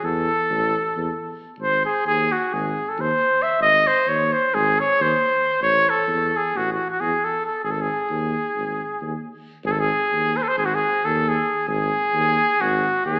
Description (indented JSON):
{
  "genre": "balkan folk",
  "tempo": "268 BPM (eighths)",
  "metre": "9/8",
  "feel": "straight",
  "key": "G# phrygian dominant",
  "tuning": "A4 = 440 Hz",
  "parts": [
    { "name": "warm trumpet", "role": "melody", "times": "0.0-13.2 s", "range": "F#4 to E5", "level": "-19 LUFS", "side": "equal", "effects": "none" },
    { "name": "dark tuba", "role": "bass", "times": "0.0-13.2 s", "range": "G#1 to E2", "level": "-28 LUFS", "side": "equal", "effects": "none" }
  ],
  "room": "wet recital hall reverb, RT60 1.6 s",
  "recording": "recorded in a church or concert hall, AM radio sound",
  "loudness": "-18 LUFS",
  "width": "side -33 dB against mid",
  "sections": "0.0-9.7 A section; 9.7-13.2 B section",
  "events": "none",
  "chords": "0.0 A5; 1.6 G#; 5.6 A5; 7.6 G#5"
}